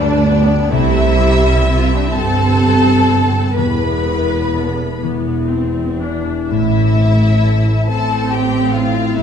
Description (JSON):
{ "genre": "classical, slow romantic movement for symphony orchestra", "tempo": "40-46 BPM (dotted quarters)", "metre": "6/8", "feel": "rubato", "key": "A minor", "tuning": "A4 = 436 Hz", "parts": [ { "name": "clear studio violin section", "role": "melody", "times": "0.0-9.2 s", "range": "D5 to B5", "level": "-23 LUFS", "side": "left 4 dB", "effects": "none" }, { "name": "rich studio violin section", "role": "second line", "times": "0.0-9.2 s", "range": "D4 to B4", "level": "-20 LUFS", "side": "left 1 dB", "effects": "none" }, { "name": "warm studio viola section", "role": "accompaniment", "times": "0.0-9.2 s", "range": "G3 to D4", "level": "-20 LUFS", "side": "equal", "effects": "none" }, { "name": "concert harp", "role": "arpeggios", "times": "0.0-9.2 s", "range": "G2 to D5", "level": "-21 LUFS", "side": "left 10 dB", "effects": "none" }, { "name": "rich studio cello section", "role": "bass", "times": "0.0-9.2 s", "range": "D2 to C3", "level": "-18 LUFS", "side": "right 2 dB", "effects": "none" }, { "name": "warm studio double bass section", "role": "bass", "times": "0.0-9.2 s", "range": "E1 to D2", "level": "-18 LUFS", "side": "right 3 dB", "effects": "none" } ], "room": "wet recital hall reverb, RT60 1.7 s", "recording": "dark, warm production", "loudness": "-12 LUFS", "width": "side -8 dB against mid", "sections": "0.0-9.2 A section", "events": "none", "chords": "0.0 G; 0.7 C; 3.6 Esus4; 5.0 E; 6.5 Am" }